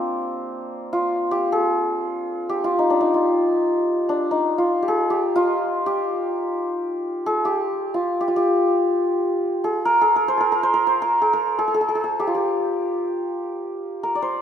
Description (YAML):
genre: Persian modal ensemble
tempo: free time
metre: none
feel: none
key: unclear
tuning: A4 = 442 Hz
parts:
  - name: santur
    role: solo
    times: 0.0-14.4 s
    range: Bb3 to D5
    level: -19 LUFS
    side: equal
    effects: none
room: wet concert hall reverb, RT60 2.1 s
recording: minimal, uncompressed stereo recording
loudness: -19 LUFS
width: side -8 dB against mid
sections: 0.0-13.8 A section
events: none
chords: none